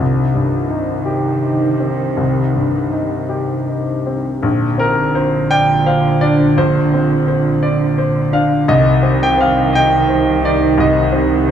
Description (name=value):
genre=neoclassical piano and strings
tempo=56 BPM (dotted quarters)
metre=6/8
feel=rubato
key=Bb major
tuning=A4 = 442 Hz
part: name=muted cello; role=second line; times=0.0-11.5 s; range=D3 to Eb3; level=-19 LUFS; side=right 5 dB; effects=none
part: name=clear baby grand piano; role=accompaniment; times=0.0-11.5 s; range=Bb1 to G5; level=-15 LUFS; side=left 1 dB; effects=none
part: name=deep dark ambient pad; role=sustained chords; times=0.0-11.5 s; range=D4 to C5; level=-23 LUFS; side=equal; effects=chorus, built-in reverb
part: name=muted double bass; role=bass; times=4.4-11.5 s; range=Bb1 to C2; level=-23 LUFS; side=equal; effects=none
room=wet recital hall reverb, RT60 1.5 s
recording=recorded in a church or concert hall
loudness=-13 LUFS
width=side -9 dB against mid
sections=0.0-4.4 A section; 4.4-11.5 B section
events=none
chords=0.0 Cm; 4.4 Bbadd9; 8.7 Cm